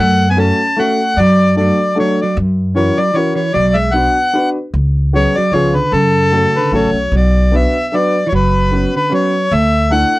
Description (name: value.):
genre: musette waltz.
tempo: 151 BPM.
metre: 3/4.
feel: swing 54% on 8ths.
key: F# minor, B minor from 7.1 s.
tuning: A4 = 445 Hz.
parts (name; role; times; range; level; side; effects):
accordion; melody; 0.0-10.2 s; A4 to A5; -15 LUFS; left 2 dB; none.
hollow-body jazz guitar; second line; 0.0-10.2 s; C#3 to C#4; -19 LUFS; right 4 dB; none.
upright bass; bass; 0.0-10.0 s; F#1 to F#2; -15 LUFS; equal; none.
warm upright piano; accompaniment; 0.4-10.1 s; A3 to B4; -18 LUFS; left 1 dB; none.
room: light reverb.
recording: dry, close 1970s-style studio recording.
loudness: -11 LUFS.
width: side -19 dB against mid.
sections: 0.0-7.1 A section; 7.1-10.2 B section.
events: none.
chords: 0.0 F#m; 1.2 D/F#; 2.4 F#7; 3.6 Bm; 4.7 C#7sus4; 5.5 C#7; 5.9 F#m; 7.1 Bm; 8.3 F#sus4; 9.5 Dsus2.